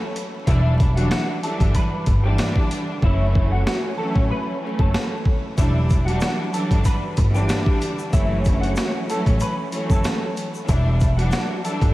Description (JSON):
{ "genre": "hip hop, boom-bap hip-hop", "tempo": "94 BPM", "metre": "4/4", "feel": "swing 55% on 16ths", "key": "E dorian", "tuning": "A4 = 440 Hz", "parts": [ { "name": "semi-hollow electric guitar", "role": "melody", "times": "0.0-11.9 s", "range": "E4 to B5", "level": "-29 LUFS", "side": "equal", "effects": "ensemble chorus, high-pass filter, low-pass filter, diffuse ambient delay" }, { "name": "rich studio string section", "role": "accompaniment", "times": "0.0-11.9 s", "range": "D3 to D4", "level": "-25 LUFS", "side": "equal", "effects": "high-pass filter, low-pass filter" }, { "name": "boom bap sampler-style drum kit", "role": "drums", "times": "0.2-11.9 s", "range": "hi-hat, kick drum, snare drum", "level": "-22 LUFS", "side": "equal", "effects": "none" }, { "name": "upright bass", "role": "bass", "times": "0.5-11.9 s", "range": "E1 to A1", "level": "-21 LUFS", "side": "equal", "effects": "none" }, { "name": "egg shaker", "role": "percussion", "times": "5.6-11.8 s", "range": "none", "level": "-44 LUFS", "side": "left 4 dB", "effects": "none" } ], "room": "light reverb, studio reverb", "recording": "vinyl crackle", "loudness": "-18 LUFS", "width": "side -17 dB against mid", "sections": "0.0-11.9 A section", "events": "hi-hats muted 3.0-5.6", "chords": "0.5 Em9; 3.0 F#m7; 5.6 Em9; 8.1 F#m7; 10.7 Em9" }